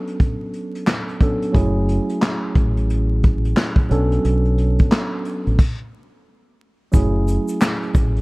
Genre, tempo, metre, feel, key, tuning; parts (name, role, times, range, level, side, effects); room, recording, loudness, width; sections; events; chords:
hip hop, boom-bap hip-hop; 89 BPM; 4/4; swing 63% on 16ths; F# minor; A4 = 440 Hz
mellow tine electric piano; accompaniment; 0.0-8.2 s; F#3 to A4; -23 LUFS; right 1 dB; slow stereo tremolo, high-pass filter, low-pass filter
vintage brush drum kit; drums; 0.1-8.2 s; crash cymbal, handclaps, hi-hat, kick drum, snare drum; -18 LUFS; equal
deep dub fingered electric bass; bass; 1.5-8.2 s; F#1 to B1; -18 LUFS; equal
egg shaker; percussion; 6.9-8.1 s; -41 LUFS; left 3 dB
small room reverb; dark, warm production, vinyl crackle; -16 LUFS; side -24 dB against mid
0.0-6.9 A section; 6.9-8.2 B section
break 0.0-1.5; stop 5.6-6.9
0.0 Bm9; 1.5 F#m9; 3.9 Bm9; 6.9 F#m9